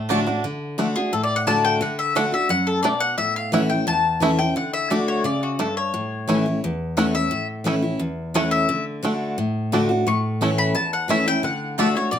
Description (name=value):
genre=bluegrass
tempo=174 BPM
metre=4/4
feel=straight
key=D major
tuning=A4 = 437 Hz
part: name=bluegrass banjo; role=melody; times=0.0-11.9 s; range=A3 to E4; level=-25 LUFS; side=right 3 dB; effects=slapback echo
part: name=picked steel-string acoustic guitar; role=accompaniment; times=0.0-12.2 s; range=E2 to F#4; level=-22 LUFS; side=equal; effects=none
part: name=mandolin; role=stabs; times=0.1-0.2, 11.8-11.9 s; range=A3 to A5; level=-25 LUFS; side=right 5 dB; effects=none
part: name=mandolin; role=melody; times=1.0-12.2 s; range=F#4 to C#6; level=-22 LUFS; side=left 4 dB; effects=none
room=wet small room reverb, RT60 0.5 s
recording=none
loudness=-19 LUFS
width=side -9 dB against mid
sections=0.4-12.2 A section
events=none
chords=0.4 D; 3.2 A; 4.6 D; 5.9 A; 8.7 D; 10.1 A; 11.4 D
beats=0.10 | 0.44 0.78 1.13 1.47 | 1.81 2.16 2.50 2.84 | 3.19 3.53 3.87 4.22 | 4.56 4.91 5.25 5.59 | 5.94 6.28 6.62 6.97 | 7.31 7.66 8.00 8.34 | 8.69 9.03 9.38 9.72 | 10.06 10.41 10.75 11.10 | 11.44 11.79 12.13